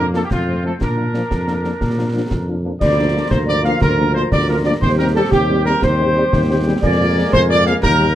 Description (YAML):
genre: military-style march for wind band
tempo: 120 BPM (dotted quarters)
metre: 6/8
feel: straight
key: Bb major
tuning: A4 = 442 Hz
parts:
  - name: clear trumpet section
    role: melody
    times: 0.0-8.1 s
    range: F4 to F5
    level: -20 LUFS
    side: equal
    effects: none
  - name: warm woodwind section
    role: second line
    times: 0.0-8.2 s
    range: Bb3 to Bb5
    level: -29 LUFS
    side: left 1 dB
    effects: none
  - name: mellow French horn section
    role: accompaniment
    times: 0.0-8.1 s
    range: F3 to Ab4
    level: -24 LUFS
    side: left 3 dB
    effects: none
  - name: warm tuba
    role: bass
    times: 0.0-8.2 s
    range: D2 to Bb2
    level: -19 LUFS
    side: equal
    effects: none
  - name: warm trombone section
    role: sustained chords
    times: 0.1-8.2 s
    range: F3 to D4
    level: -26 LUFS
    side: equal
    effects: none
  - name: concert snare drum, concert bass drum and clash cymbals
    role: drums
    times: 0.1-8.0 s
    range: none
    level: -22 LUFS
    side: equal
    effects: none
  - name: flute section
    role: second line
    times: 2.8-8.1 s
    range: G4 to F5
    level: -22 LUFS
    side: right 2 dB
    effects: none
room: light reverb, small room ambience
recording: rough home demo mix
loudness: -14 LUFS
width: side -12 dB against mid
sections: 0.0-2.8 A section; 2.8-8.2 B section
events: none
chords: 0.3 F; 0.8 Bb; 2.8 Bb/D; 4.8 Cm/Eb; 6.8 Bb7/F